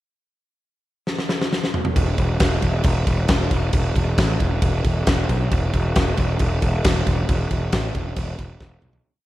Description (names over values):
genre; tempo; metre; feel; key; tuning
heavy metal; 135 BPM; 4/4; straight; unclear; A4 = 439 Hz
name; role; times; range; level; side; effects
big rock drum kit; drums; 1.1-9.0 s; crash cymbal, kick drum, snare drum, toms; -21 LUFS; equal; none
fuzz picked electric bass; bass; 2.0-9.0 s; E1 to B1; -21 LUFS; equal; overdrive
room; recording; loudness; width
little or no reverb; rough home demo mix; -18 LUFS; side -15 dB against mid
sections
0.2-2.0 pickup bar; 2.0-9.0 riff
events
drum fill 1.1-2.0, 8.6-9.0; fade-out 7.3-9.0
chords
none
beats
| 0.18 0.63 1.07 1.52 | 1.97 2.41 2.86 3.30 | 3.75 4.19 4.64 5.08 | 5.52 5.96 6.41 6.84 | 7.29 7.73 8.17 8.61